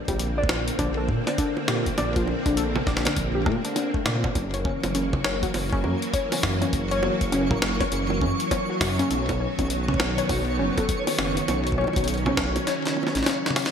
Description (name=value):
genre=IDM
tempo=101 BPM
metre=4/4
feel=swing 62% on 16ths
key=unclear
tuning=A4 = 440 Hz
part: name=soft string machine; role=sustained chords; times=0.0-13.7 s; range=D3 to C#4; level=-29 LUFS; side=equal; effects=ensemble chorus, sidechain pumping
part: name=warbly dusty pluck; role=arpeggios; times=0.1-13.7 s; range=A3 to D5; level=-28 LUFS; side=left 2 dB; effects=chorus, ping-pong delay
part: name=dark detuned saw bass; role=bass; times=0.1-13.2 s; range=F#1 to Bb2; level=-28 LUFS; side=equal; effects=none
part: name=electronic kick drum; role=drums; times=0.1-12.5 s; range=none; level=-29 LUFS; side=equal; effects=small room ambience
part: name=jungle sampler-style drum kit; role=drums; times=0.1-13.7 s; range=bongos, hi-hat, snare drum, toms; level=-28 LUFS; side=right 1 dB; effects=small room ambience, gated reverb
part: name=twinkling granular texture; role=texture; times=4.7-13.7 s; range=C#5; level=-32 LUFS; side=right 1 dB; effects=built-in reverb
room=moderate plate reverb, RT60 1.3 s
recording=bright 1980s-style digital production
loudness=-22 LUFS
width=side -7 dB against mid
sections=0.0-13.7 A section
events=kick drops out 12.7-13.7; drum fill 12.7-13.7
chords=0.0 Bbadd9; 4.4 F#7; 9.1 B